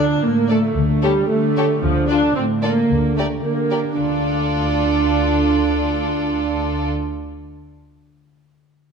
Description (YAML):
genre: cinematic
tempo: 112 BPM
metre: 2/4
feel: straight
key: D minor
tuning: A4 = 439 Hz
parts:
  - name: clear studio violin section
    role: melody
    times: 0.0-6.9 s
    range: C#5 to D5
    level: -30 LUFS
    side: left 4 dB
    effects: none
  - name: rich studio violin section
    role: second line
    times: 0.0-6.9 s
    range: D4 to Bb4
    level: -27 LUFS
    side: left 4 dB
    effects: none
  - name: warm studio viola section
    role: accompaniment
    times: 0.0-6.9 s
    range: F3 to D4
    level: -19 LUFS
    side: right 2 dB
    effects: none
  - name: concert harp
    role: arpeggios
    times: 0.0-7.9 s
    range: D3 to F5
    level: -26 LUFS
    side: left 8 dB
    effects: none
  - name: dark studio cello section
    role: bass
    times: 0.0-6.9 s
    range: A2 to D3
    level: -24 LUFS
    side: right 4 dB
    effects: none
  - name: dark studio double bass section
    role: bass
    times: 0.0-6.9 s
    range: D2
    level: -25 LUFS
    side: right 2 dB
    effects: none
room: moderate scoring stage reverb, RT60 1.7 s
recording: dark, warm production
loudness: -16 LUFS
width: side -6 dB against mid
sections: 0.0-4.0 A section; 4.0-6.1 B section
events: none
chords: 0.0 Dm; 0.8 A7(no3)/D; 1.8 Dm; 2.9 Gm/D; 4.0 Dm